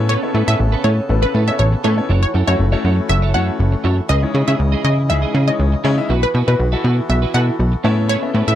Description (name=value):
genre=pop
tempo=120 BPM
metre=4/4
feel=straight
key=F# dorian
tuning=A4 = 440 Hz
part: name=clear baby grand piano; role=accompaniment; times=0.0-8.6 s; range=G#3 to E5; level=-24 LUFS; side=left 6 dB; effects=none
part: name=accordion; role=sustained chords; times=0.0-8.6 s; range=C#3 to D#5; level=-28 LUFS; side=left 1 dB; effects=none
part: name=twelve-string electric guitar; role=riff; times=0.0-8.6 s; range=C#4 to D#5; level=-26 LUFS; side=right 10 dB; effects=ensemble chorus
part: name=plucky analog bass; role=bass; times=0.0-8.6 s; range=F#1 to C#3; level=-15 LUFS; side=equal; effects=none
part: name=wide unison pluck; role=melody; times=0.1-8.6 s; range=B4 to F#5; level=-22 LUFS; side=right 1 dB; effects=none
room=little or no reverb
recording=dry, close 1970s-style studio recording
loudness=-14 LUFS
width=side -11 dB against mid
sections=0.0-8.6 A section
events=none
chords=0.0 Aadd9; 2.1 F#m7; 4.1 C#madd9; 6.1 Bsus4; 7.8 Aadd9